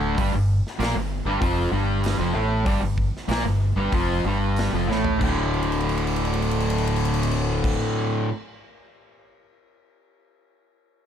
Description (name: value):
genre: stoner and doom metal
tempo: 94 BPM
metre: 4/4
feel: straight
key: D minor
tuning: A4 = 440 Hz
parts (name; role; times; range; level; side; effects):
- fuzz guitar; riff; 0.0-8.3 s; D2 to Bb3; -23 LUFS; equal; distortion
- modern bright fingered electric bass; bass; 0.0-7.7 s; D1 to Bb1; -26 LUFS; equal; overdrive
- big rock drum kit; drums; 0.2-9.3 s; crash cymbal, hi-hat, kick drum, ride cymbal, snare drum, toms; -30 LUFS; equal; none
room: little or no reverb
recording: dark, warm production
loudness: -21 LUFS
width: side -9 dB against mid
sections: 0.0-5.2 A section; 5.2-7.8 B section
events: slowing down 0.2-5.2; drum fill 4.9-5.2, 5.5-7.6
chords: 0.2 Fadd9; 5.2 D5